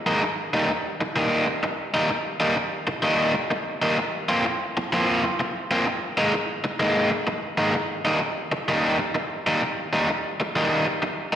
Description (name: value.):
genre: blues.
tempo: 128 BPM.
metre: 4/4.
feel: swing 66% on 8ths.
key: Eb major.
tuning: A4 = 440 Hz.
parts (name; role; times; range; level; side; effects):
overdriven electric guitar; solo; 0.1-11.4 s; Eb3 to F4; -21 LUFS; equal; spring reverb, slapback echo.
room: moderate plate reverb, RT60 2.7 s.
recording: live gig heard through the venue's PA, recital hall reverb.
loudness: -21 LUFS.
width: side -10 dB against mid.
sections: 0.0-11.4 A section.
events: none.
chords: 0.2 Eb; 4.0 Bbsus2; 5.9 Absus2; 7.7 Eb.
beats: | 0.22 0.69 1.16 1.63 | 2.10 2.57 3.04 3.51 | 3.98 4.45 4.92 5.39 | 5.86 6.33 6.80 7.27 | 7.74 8.21 8.68 9.14 | 9.61 10.08 10.55 11.02.